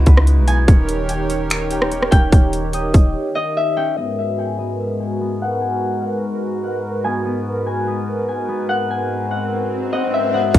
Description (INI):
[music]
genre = hip hop, atmospheric cloud-rap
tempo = 146 BPM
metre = 4/4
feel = half-time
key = G# minor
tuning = A4 = 439 Hz
[part]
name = Celtic harp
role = melody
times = 0.0-10.6 s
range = D#5 to G#5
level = -24 LUFS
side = left 4 dB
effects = low-pass filter, cassette tape, analog delay
[part]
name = hollow soft pad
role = sustained chords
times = 0.0-10.6 s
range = G#2 to C#5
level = -22 LUFS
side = right 1 dB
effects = chorus, low-pass filter, cassette tape
[part]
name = concert harp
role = arpeggios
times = 0.0-10.6 s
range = B3 to G#5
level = -29 LUFS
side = left 2 dB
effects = low-pass filter, cassette tape, analog delay
[part]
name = soft 808-style bass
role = bass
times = 0.0-3.1, 10.5-10.6 s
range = D#1 to C#2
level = -18 LUFS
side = equal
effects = none
[part]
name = trap drum kit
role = drums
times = 0.1-3.0, 10.5-10.6 s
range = finger snaps, hi-hat, kick drum, rim click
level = -12 LUFS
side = equal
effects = overdrive, cassette tape
[part]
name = swell and impact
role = sound effects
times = 9.1-10.6 s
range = none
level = -25 LUFS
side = equal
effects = none
[sound]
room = digital ambience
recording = home recording on cassette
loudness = -16 LUFS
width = side -13 dB against mid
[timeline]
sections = 0.0-4.0 A section; 4.0-10.5 B section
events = break 3.1-4.0; filter sweep 4.0-10.5; swell 9.1-10.5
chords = 0.0 C#m11; 0.7 D#7; 4.0 G#m7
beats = 0.27 | 0.68 1.09 1.50 1.91 | 2.33 2.74 3.15 3.56 | 3.97 4.38 4.79 5.20 | 5.61 6.02 6.43 6.85 | 7.26 7.67 8.08 8.49 | 8.90 9.31 9.72 10.13 | 10.54